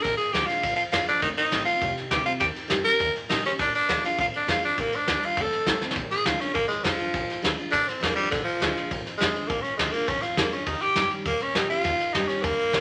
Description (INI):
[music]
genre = rockabilly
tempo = 203 BPM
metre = 4/4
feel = straight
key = Bb mixolydian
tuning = A4 = 438 Hz
[part]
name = growling tenor saxophone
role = melody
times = 0.0-12.8 s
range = D3 to Bb4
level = -27 LUFS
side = equal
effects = none
[part]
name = picked steel-string acoustic guitar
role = accompaniment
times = 0.0-12.8 s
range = F2 to G4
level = -36 LUFS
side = equal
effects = none
[part]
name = upright bass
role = bass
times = 0.0-12.8 s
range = F1 to Bb2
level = -40 LUFS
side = equal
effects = none
[part]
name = soft brush drum kit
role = drums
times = 0.0-12.8 s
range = kick drum, ride cymbal, snare drum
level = -30 LUFS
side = equal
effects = none
[sound]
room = moderate club reverb, RT60 0.8 s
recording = none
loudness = -25 LUFS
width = mono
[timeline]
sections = 0.0-6.0 A section; 6.0-12.8 B section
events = drum fill 5.8; tenor saxophone solo 6.0-12.8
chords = 0.0 Bb7; 1.2 F7; 2.4 Eb7; 3.6 Bb7; 5.4 F7; 6.0 Bb7; 10.7 Eb7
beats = | 0.04 0.34 0.63 0.93 | 1.23 1.52 1.82 2.12 | 2.41 2.71 3.00 3.30 | 3.59 3.89 4.19 4.48 | 4.78 5.07 5.37 5.66 | 5.96 6.25 6.55 6.84 | 7.14 7.43 7.73 8.02 | 8.32 8.61 8.91 9.20 | 9.49 9.79 10.08 10.38 | 10.67 10.97 11.26 11.56 | 11.85 12.15 12.44 12.73